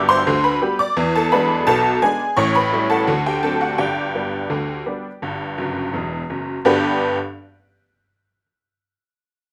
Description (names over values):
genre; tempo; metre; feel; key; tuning
ragtime piano; 85 BPM; 2/4; straight; G major; A4 = 440 Hz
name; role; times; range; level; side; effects
honky-tonk upright piano; solo; 0.0-7.2 s; E1 to D6; -19 LUFS; equal; none
room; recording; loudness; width
wet studio reverb, RT60 0.6 s; rough home demo mix; -20 LUFS; mono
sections
0.0-6.6 A section; 6.6-8.1 B section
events
honky-tonk piano fill 5.6-6.6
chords
0.0 G; 1.0 E7; 2.4 A7; 3.1 D7; 3.8 G